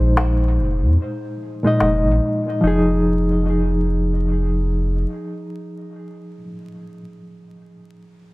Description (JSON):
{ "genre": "trip hop", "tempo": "73 BPM", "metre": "4/4", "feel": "swing 57% on 16ths", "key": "F minor", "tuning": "A4 = 440 Hz", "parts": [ { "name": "barky reed electric piano", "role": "accompaniment", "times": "0.0-8.3 s", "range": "Bb2 to Eb5", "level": "-21 LUFS", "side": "equal", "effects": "overdrive, fast tremolo, tape echo" }, { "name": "soft dub sub bass", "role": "bass", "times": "0.0-5.1 s", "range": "F1 to Bb2", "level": "-18 LUFS", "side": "equal", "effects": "none" }, { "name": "darbuka", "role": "percussion", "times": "0.2-2.0 s", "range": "none", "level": "-25 LUFS", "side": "left 2 dB", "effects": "analog delay" } ], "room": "small room ambience", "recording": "echo-heavy mix, vinyl crackle", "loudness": "-16 LUFS", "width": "side -21 dB against mid", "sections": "0.0-2.6 A section; 2.6-5.9 B section", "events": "none", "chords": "0.0 Fm7" }